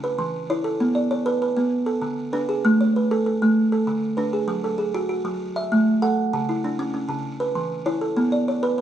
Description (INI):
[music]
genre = southern african traditional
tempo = 130 BPM (dotted quarters)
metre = 12/8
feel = straight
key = A major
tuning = A4 = 440 Hz
[part]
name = buzzing kalimba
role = solo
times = 0.0-8.8 s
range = C#3 to F#5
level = -20 LUFS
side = right 1 dB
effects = none
[sound]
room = moderate recital hall reverb, RT60 1.6 s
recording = none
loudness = -20 LUFS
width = side -10 dB against mid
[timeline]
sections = 0.0-8.8 A section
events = none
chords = 0.0 E5; 0.8 Bm; 1.7 D5; 2.6 A; 3.6 D5; 4.5 F#m; 5.4 A5; 6.3 C#m; 7.2 E5; 8.2 Bm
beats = 0.34 | 0.80 1.26 1.72 2.18 | 2.64 3.10 3.56 4.02 | 4.48 4.94 5.40 5.86 | 6.32 6.78 7.24 7.71 | 8.17 8.63